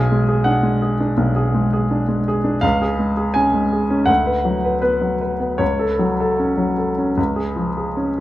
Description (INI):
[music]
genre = classical, romantic character piece for solo piano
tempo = 71-85 BPM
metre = 4/4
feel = rubato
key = unclear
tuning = A4 = 440 Hz
[part]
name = warm baby grand piano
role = solo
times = 0.0-8.2 s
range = B1 to G#5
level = -16 LUFS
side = equal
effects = none
[sound]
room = wet large studio reverb, RT60 1.0 s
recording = heard from further back in the room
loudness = -16 LUFS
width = side -15 dB against mid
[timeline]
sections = 0.0-8.2 A section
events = none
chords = 0.0 G#m7b5/B; 2.6 C#; 4.1 Bm/D; 5.6 F#m/C#; 7.2 C#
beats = 0.47 1.18 1.91 | 2.63 3.35 4.08 4.83 | 5.61 6.40 7.17 7.97